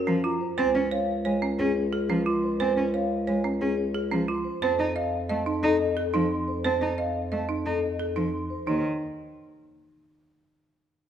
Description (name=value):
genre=classical, minimalist pattern music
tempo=178 BPM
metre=6/4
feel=straight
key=unclear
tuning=A4 = 436 Hz
part: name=vibraphone with soft mallets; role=melody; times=0.0-8.8 s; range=Ab4 to C6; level=-31 LUFS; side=left 6 dB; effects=none
part: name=folk marimba with hard mallets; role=arpeggios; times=0.0-8.8 s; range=Db4 to Eb5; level=-28 LUFS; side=right 5 dB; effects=none
part: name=mellow bass clarinet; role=bass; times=0.0-8.8 s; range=Db2 to Gb2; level=-30 LUFS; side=left 1 dB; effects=none
part: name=rich cello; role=accompaniment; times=0.1-8.8 s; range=Eb3 to Eb4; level=-30 LUFS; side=equal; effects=none
room=moderate recital hall reverb, RT60 1.7 s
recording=recorded in a church or concert hall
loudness=-24 LUFS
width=side -9 dB against mid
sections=0.0-8.7 A section; 8.7-10.7 B section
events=none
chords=0.0 Gbmaj7; 0.6 Db; 4.6 F7; 8.7 N.C.